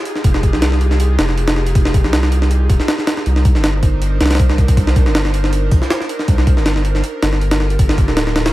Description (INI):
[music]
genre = drum and bass, jungle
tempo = 159 BPM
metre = 4/4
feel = swing 53% on 16ths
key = F dorian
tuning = A4 = 440 Hz
[part]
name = airy breathy pad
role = sustained chords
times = 0.0-8.5 s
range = D4 to C5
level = -24 LUFS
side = right 1 dB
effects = chorus
[part]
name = jungle sampler-style drum kit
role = drums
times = 0.1-8.5 s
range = hi-hat, kick drum, snare drum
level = -15 LUFS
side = equal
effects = none
[part]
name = saturated sub bass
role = bass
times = 0.2-8.5 s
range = D1 to C2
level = -16 LUFS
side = equal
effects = tube saturation
[sound]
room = little or no reverb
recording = none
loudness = -12 LUFS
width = side -16 dB against mid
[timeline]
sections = 0.0-8.5 A section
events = none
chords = 0.0 Fm9; 3.3 Cm9; 7.0 Gm9